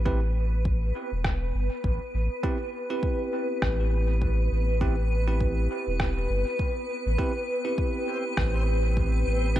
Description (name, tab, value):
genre	ambient dub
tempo	101 BPM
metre	4/4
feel	swing 57% on 16ths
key	A minor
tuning	A4 = 440 Hz
part	granular cloud pad	sustained chords	0.0-9.6 s	B4	-32 LUFS	left 1 dB	built-in reverb
part	bell-like tine electric piano	stabs	0.0-9.6 s	C4 to B4	-33 LUFS	right 3 dB	dub echo
part	warm sub bass	bass	0.0-9.6 s	E1 to A1	-25 LUFS	equal	none
part	electronic kick drum	drums	0.1-9.6 s	none	-29 LUFS	equal	none
part	electronic rim click	drums	1.2-8.5 s	none	-34 LUFS	equal	dub echo
part	backwards swelling texture	texture	7.6-9.6 s	C4	-39 LUFS	right 3 dB	built-in reverb
room	digital ambience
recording	none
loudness	-24 LUFS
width	side -13 dB against mid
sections	0.0-9.6 A section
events	none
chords	0.0 Am9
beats	| 0.06 0.65 1.25 1.84 | 2.44 3.03 3.62 4.22 | 4.81 5.41 6.00 6.59 | 7.19 7.78 8.38 8.97 | 9.56